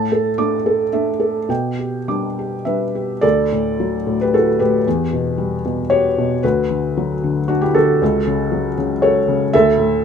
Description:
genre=neoclassical minimalist piano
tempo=102-119 BPM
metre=3/4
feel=rubato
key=D major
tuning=A4 = 440 Hz
part: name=felt-muted upright piano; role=solo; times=0.0-10.0 s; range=C#2 to D6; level=-15 LUFS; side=equal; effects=none
room=light reverb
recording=minimal, uncompressed stereo recording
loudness=-15 LUFS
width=side -7 dB against mid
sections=0.0-3.2 A section; 3.2-10.0 B section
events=none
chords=0.0 Dsus2/A; 1.5 G6/B; 3.2 Dadd9; 4.9 Emadd9; 6.4 Bm/D; 8.0 F#m/C#; 9.5 Dsus2

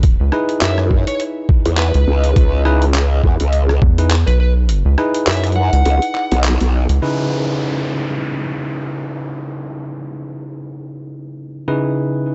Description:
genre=glitch hop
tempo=103 BPM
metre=4/4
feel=swing 57% on 16ths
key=C# minor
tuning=A4 = 439 Hz
part: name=rubbery square bass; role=bass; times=0.0-7.0 s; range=B1 to E2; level=-16 LUFS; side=equal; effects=none
part: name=boom bap sampler-style drum kit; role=drums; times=0.0-7.0 s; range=handclaps, hi-hat, rim click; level=-25 LUFS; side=equal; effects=none
part: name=electronic kick drum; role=drums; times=0.0-4.0 s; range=none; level=-15 LUFS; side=equal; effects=none
part: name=bell-like tine electric piano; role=stabs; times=0.3-12.3 s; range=C#3 to B4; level=-24 LUFS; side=equal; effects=sidechain pumping, analog delay
part: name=biting lead guitar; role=melody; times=0.6-6.4 s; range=B4 to F#5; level=-26 LUFS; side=equal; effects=overdrive, vintage 12-bit sampler grit, analog delay
part: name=growl bass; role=bass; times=0.6-6.9 s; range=B1 to F#2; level=-17 LUFS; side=equal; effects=chorus, tube saturation
part: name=downlifter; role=sound effects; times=7.0-11.7 s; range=none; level=-31 LUFS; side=equal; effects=none
room=little or no reverb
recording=dry, gritty hardware recording, nothing above 7.9 kHz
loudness=-16 LUFS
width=mono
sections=0.0-7.0 A section; 7.0-12.3 B section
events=drop 0.0-7.0; kick drops out 4.7-7.0; band accent 6.4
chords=0.0 C#m7

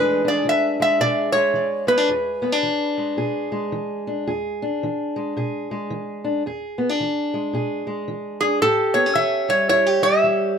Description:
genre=acoustic country blues, solo or duo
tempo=110 BPM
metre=4/4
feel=swing 62% on 8ths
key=E mixolydian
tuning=A4 = 440 Hz
part: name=metal-body resonator slide guitar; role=melody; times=0.0-2.9, 8.4-10.6 s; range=G#4 to E5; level=-18 LUFS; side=equal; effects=plate reverb, tape echo
part: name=fingerpicked steel-string acoustic guitar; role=accompaniment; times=0.0-10.6 s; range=E2 to G#4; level=-23 LUFS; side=equal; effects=none
room=moderate small room reverb, RT60 0.5 s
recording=none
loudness=-19 LUFS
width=side -7 dB against mid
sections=0.0-10.6 A section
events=none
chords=0.0 E7; 8.6 A7

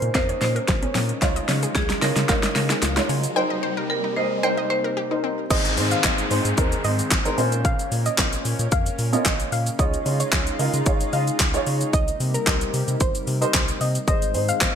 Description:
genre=dance-pop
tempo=112 BPM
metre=4/4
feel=straight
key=Ab major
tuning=A4 = 438 Hz
part: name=marimba with hard mallets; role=melody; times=0.0-5.2 s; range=Ab4 to C5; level=-28 LUFS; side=equal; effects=digital delay
part: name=dark baby grand piano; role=accompaniment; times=0.0-14.8 s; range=C4 to Eb5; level=-27 LUFS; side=right 2 dB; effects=lush chorus, sidechain pumping
part: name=lush unison pad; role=sustained chords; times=0.0-14.8 s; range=C3 to C5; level=-32 LUFS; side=left 1 dB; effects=chorus, sidechain pumping
part: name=round analog bass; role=bass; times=0.0-14.8 s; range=G1 to Db3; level=-26 LUFS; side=equal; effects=sidechain pumping
part: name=pop drum kit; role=drums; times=0.0-14.7 s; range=crash cymbal, handclaps, hi-hat, kick drum, shaker, snare drum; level=-23 LUFS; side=equal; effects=overdrive, gated reverb
part: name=riser and downlifter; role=sound effects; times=1.4-9.8 s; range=none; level=-32 LUFS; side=equal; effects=none
part: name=wide unison pluck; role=arpeggios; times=0.1-5.4 s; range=C4 to G5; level=-30 LUFS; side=moving between left 7 dB and right 3 dB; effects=auto-pan, sidechain pumping, digital delay
part: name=soft round pluck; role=melody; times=5.5-14.8 s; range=Bb4 to F5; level=-29 LUFS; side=left 1 dB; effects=chorus, digital delay
room=light reverb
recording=bright 1980s-style digital production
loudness=-19 LUFS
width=side -8 dB against mid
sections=0.0-5.5 A section; 5.5-14.8 B section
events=build-up 0.0-5.5; drum fill 0.0-3.4; break 3.4-5.5; drop 5.5-14.8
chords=0.0 Bbmadd9; 1.2 Dbadd9; 3.4 Cm7; 5.5 Ab; 7.4 Bbmadd9; 9.8 Dbadd9; 11.9 Cm7; 14.1 Ab

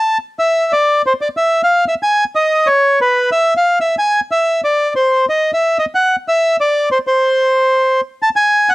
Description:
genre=tango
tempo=184 BPM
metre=3/4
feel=rubato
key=unclear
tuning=A4 = 442 Hz
part: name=bandoneon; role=solo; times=0.0-8.7 s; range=B4 to A5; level=-12 LUFS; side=equal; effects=cassette tape
room=light reverb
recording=home recording on cassette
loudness=-12 LUFS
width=side -20 dB against mid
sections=0.4-8.2 A section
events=none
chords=none

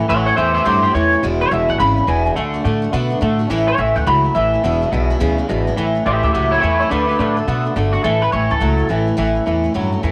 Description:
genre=rockabilly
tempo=211 BPM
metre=4/4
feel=swing 62% on 8ths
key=A major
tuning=A4 = 439 Hz
part: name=picked steel-string acoustic guitar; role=accompaniment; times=0.0-10.1 s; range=E2 to F#4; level=-27 LUFS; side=equal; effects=none
part: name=twangy electric guitar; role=riff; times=0.0-10.1 s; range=E2 to B3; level=-22 LUFS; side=equal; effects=analog chorus
part: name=electric guitar through a small old amp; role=melody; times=0.1-9.1 s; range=D4 to B5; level=-20 LUFS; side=equal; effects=analog chorus, tape echo
part: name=upright bass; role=bass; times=0.1-10.1 s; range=E1 to B2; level=-22 LUFS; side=equal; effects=none
room=light reverb, studio reverb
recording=none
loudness=-17 LUFS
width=mono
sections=0.0-5.8 A section; 5.8-10.1 B section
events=clean electric guitar solo 0.0-5.8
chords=0.0 A; 1.2 E; 2.4 D; 3.5 A; 4.6 E; 5.8 A; 6.9 D; 8.0 A

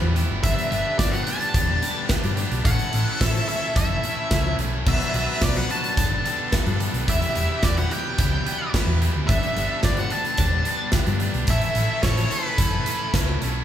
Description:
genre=indie rock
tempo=109 BPM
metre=4/4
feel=straight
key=unclear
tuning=A4 = 440 Hz
part: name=brilliant trumpet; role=second line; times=0.0-13.6 s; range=G4 to B4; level=-35 LUFS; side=left 1 dB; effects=none
part: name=biting overdriven guitar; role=riff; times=0.0-13.6 s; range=E2 to A4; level=-32 LUFS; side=left 7 dB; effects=none
part: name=overdriven electric guitar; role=riff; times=0.0-13.6 s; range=G2 to E4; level=-30 LUFS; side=right 4 dB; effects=none
part: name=hollow-body short-scale fingered electric bass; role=bass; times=0.0-13.6 s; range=E1 to G2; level=-25 LUFS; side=equal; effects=none
part: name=big rock drum kit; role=drums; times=0.2-13.5 s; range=crash cymbal, hi-hat, kick drum, snare drum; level=-24 LUFS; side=equal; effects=none
part: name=octave-fuzz lead guitar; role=melody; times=0.4-13.1 s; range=B4 to A5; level=-26 LUFS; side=equal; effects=distortion
room=light reverb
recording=band playing live in one room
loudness=-20 LUFS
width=side -10 dB against mid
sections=0.0-13.6 A section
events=none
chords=0.4 Gadd9; 2.7 A; 4.9 Bm; 6.0 Gadd9; 7.1 Em; 9.3 Gadd9; 11.5 Aadd9

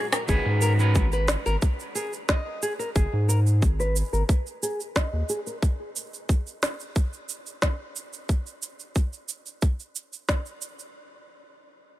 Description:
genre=organic downtempo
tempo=90 BPM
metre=4/4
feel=straight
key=G# minor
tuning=A4 = 440 Hz
part: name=nylon-string guitar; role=arpeggios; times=0.0-5.6 s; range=G#4 to D#5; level=-31 LUFS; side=left 1 dB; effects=low-pass filter, tape echo
part: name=organic electronic drum kit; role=drums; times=0.1-10.9 s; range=cabasa, hi-hat, rim click, snare drum, woodblock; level=-30 LUFS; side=right 1 dB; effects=overdrive
part: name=electric guitar at the edge of break-up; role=accompaniment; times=0.3-1.1 s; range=D#3 to B4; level=-32 LUFS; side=right 1 dB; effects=sidechain pumping, tape echo
part: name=round analog bass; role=bass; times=0.3-5.2 s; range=G#1 to G#2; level=-22 LUFS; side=equal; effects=sidechain pumping
part: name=electronic kick drum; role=drums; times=0.3-10.4 s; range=none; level=-23 LUFS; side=equal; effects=overdrive
room=little or no reverb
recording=none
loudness=-23 LUFS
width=side -15 dB against mid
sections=0.3-11.0 A section; 11.0-12.0 B section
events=break 0.0; drum fill 0.0; filter sweep on nylon-string guitar 0.3-5.6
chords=0.3 G#5; 11.0 N.C.

